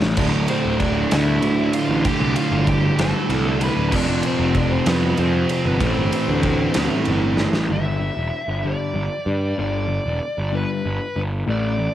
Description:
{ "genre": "quiet-loud alternative rock", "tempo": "64 BPM (dotted quarters)", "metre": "6/8", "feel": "straight", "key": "unclear", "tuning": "A4 = 438 Hz", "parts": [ { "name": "sludgy distorted guitar", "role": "riff", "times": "0.0-7.7 s", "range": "D2 to A3", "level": "-24 LUFS", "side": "left 5 dB", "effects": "overdrive, cassette tape" }, { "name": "fuzz picked electric bass", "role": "bass", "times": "0.0-11.9 s", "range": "D1 to G2", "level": "-22 LUFS", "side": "equal", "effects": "overdrive" }, { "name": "big rock drum kit", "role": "drums", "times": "0.0-7.7 s", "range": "crash cymbal, kick drum, ride cymbal, snare drum", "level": "-25 LUFS", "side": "equal", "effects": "cassette tape" }, { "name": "bluesy overdriven lead guitar", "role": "melody", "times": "0.2-11.9 s", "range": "B3 to B5", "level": "-26 LUFS", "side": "equal", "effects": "distortion, cassette tape, analog delay" }, { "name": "thick fuzz guitar", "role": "riff", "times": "0.2-7.7 s", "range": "D2 to A3", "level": "-23 LUFS", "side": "right 7 dB", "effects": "distortion, cassette tape" }, { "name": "electric guitar at the edge of break-up", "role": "arpeggios", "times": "7.7-11.9 s", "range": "G2 to A3", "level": "-28 LUFS", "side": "left 5 dB", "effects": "wide subtle chorus, cassette tape, analog delay" } ], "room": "small room reverb", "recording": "home recording on cassette", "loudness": "-18 LUFS", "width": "side -12 dB against mid", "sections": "0.0-7.7 A section; 7.7-11.9 B section", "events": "drum fill 0.0, 7.4-7.7", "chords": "0.2 Dm; 3.9 F5; 5.8 Am; 7.7 G5" }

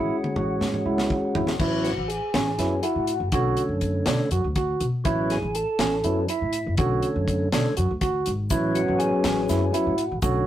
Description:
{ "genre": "progressive instrumental, band music in an uneven meter", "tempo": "243 BPM (eighths)", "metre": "7/8", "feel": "straight", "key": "A major", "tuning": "A4 = 440 Hz", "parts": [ { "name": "percussive tonewheel organ", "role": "accompaniment", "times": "0.0-10.5 s", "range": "D3 to A4", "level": "-25 LUFS", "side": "left 1 dB", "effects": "slow rotary speaker" }, { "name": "barky tine electric piano", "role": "arpeggios", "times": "0.0-10.5 s", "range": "C#4 to F#4", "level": "-27 LUFS", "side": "right 3 dB", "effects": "none" }, { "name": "upright bass", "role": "bass", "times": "0.0-10.4 s", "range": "F#1 to B2", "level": "-28 LUFS", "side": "left 1 dB", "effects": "none" }, { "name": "deep reggae drum kit", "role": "drums", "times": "0.2-10.3 s", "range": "crash cymbal, hi-hat, kick drum, snare drum, toms", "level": "-28 LUFS", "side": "equal", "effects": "none" }, { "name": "egg shaker", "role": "percussion", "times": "8.5-10.5 s", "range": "none", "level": "-40 LUFS", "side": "left 5 dB", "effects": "none" } ], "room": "moderate studio reverb, RT60 0.6 s", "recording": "rough rehearsal-room recording, tube saturation", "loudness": "-22 LUFS", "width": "side -12 dB against mid", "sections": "0.0-1.6 A section; 1.6-10.5 B section", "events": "drum fill 0.0-1.6; tonewheel organ solo 1.6-10.5", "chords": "0.0 Amaj7; 1.6 A6; 3.3 Bm9; 5.1 A6; 6.8 Bm9; 8.5 A6" }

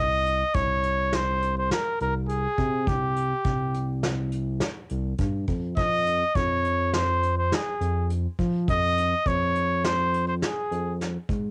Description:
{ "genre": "progressive instrumental, band music in an uneven meter", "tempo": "103 BPM", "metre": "5/4", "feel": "straight", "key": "unclear", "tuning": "A4 = 440 Hz", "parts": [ { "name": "warm trumpet", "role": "melody", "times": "0.0-11.0 s", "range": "G4 to Eb5", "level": "-27 LUFS", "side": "equal", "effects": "cassette tape" }, { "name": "smooth synth bass", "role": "bass", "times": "0.0-11.5 s", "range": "C2 to F3", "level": "-30 LUFS", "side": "equal", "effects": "none" }, { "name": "vintage brush drum kit", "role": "drums", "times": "0.3-11.4 s", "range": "hi-hat, kick drum, snare drum", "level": "-32 LUFS", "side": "equal", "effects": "cassette tape" } ], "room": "light reverb", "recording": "home recording on cassette", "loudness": "-26 LUFS", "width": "mono", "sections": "0.0-11.5 A section", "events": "none", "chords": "0.0 C5; 5.8 N.C." }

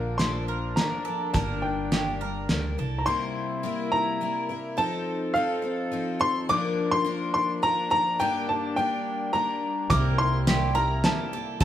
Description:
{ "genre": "indie folk with a building arrangement", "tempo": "105 BPM", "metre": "3/4", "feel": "straight", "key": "C mixolydian", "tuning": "A4 = 440 Hz", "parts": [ { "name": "warm upright piano", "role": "melody", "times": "0.0-11.6 s", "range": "F5 to D6", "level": "-27 LUFS", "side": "equal", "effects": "none" }, { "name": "picked twelve-string acoustic guitar", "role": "accompaniment", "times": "0.0-11.6 s", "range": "G2 to Bb4", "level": "-31 LUFS", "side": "left 5 dB", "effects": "none" }, { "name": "dark brass ensemble", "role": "sustained chords", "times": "0.0-11.6 s", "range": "C3 to A4", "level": "-35 LUFS", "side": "right 1 dB", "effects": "none" }, { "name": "bowl-back mandolin", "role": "arpeggios", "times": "0.0-3.1, 9.9-11.6 s", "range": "G4 to Bb4", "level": "-34 LUFS", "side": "right 7 dB", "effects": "none" }, { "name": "upright bass", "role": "bass", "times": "0.0-3.0, 9.9-11.6 s", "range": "G1 to F2", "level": "-29 LUFS", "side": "right 1 dB", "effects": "none" }, { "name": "cloth-damped thuddy drum kit", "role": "drums", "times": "0.2-2.6, 9.9-11.6 s", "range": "hi-hat, kick drum, snare drum", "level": "-26 LUFS", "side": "equal", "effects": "none" }, { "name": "dark baby grand piano", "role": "accompaniment", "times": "9.9-11.6 s", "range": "C2 to E5", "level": "-35 LUFS", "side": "right 3 dB", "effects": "none" } ], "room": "moderate large studio reverb, RT60 1.2 s", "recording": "band playing live in one room", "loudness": "-24 LUFS", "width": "side -11 dB against mid", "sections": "0.0-3.1 A section; 3.1-11.6 A section", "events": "none", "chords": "0.0 Bb; 1.3 Gm; 3.1 C7; 4.8 F7; 6.5 Bb; 8.2 Gm; 9.9 C7" }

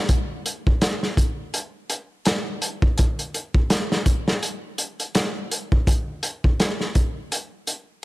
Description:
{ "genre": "trip hop", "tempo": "83 BPM", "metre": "4/4", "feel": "swing 58% on 16ths", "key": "none", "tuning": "none", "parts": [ { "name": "crunchy breakbeat drum kit", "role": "drums", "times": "0.1-7.9 s", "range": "hi-hat, kick drum, snare drum", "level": "-20 LUFS", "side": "equal", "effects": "none" } ], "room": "little or no reverb", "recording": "lossy compression artefacts", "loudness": "-21 LUFS", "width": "side -19 dB against mid", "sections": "0.0-8.0 A section", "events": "none", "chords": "none" }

